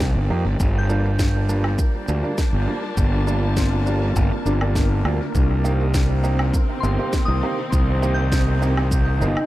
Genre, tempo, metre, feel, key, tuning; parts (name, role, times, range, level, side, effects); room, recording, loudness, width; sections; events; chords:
ambient dub; 101 BPM; 4/4; straight; G minor; A4 = 440 Hz
warm studio string section; sustained chords; 0.0-9.5 s; C3 to A5; -31 LUFS; left 2 dB
fuzz fingered electric bass; bass; 0.0-9.3 s; G1 to F2; -20 LUFS; equal; overdrive, tube saturation
electronic kick drum; drums; 0.0-9.0 s; -21 LUFS; equal; small room ambience
electronic snare drum, shaker and woodblock; drums; 0.0-9.5 s; -32 LUFS; equal; small room ambience, dub echo
clear upright piano; stabs; 0.3-9.3 s; F3 to G4; -28 LUFS; right 3 dB; dub echo
wind-like tuned noise texture; texture; 1.8-9.5 s; Bb3 to Bb4; -34 LUFS; right 1 dB; built-in reverb
soft synth bell; arpeggios; 0.8-9.5 s; C4 to G6; -31 LUFS; left 2 dB; chorus, vintage 12-bit sampler grit, dub echo
trombone with bucket mute; melody; 9.2-9.5 s; Eb4; -24 LUFS; equal
studio ambience; -18 LUFS; side -16 dB against mid
0.0-9.5 A section
fade-in on string section 0.0-9.5
0.0 Cm7; 0.6 Gm7; 5.3 Cm7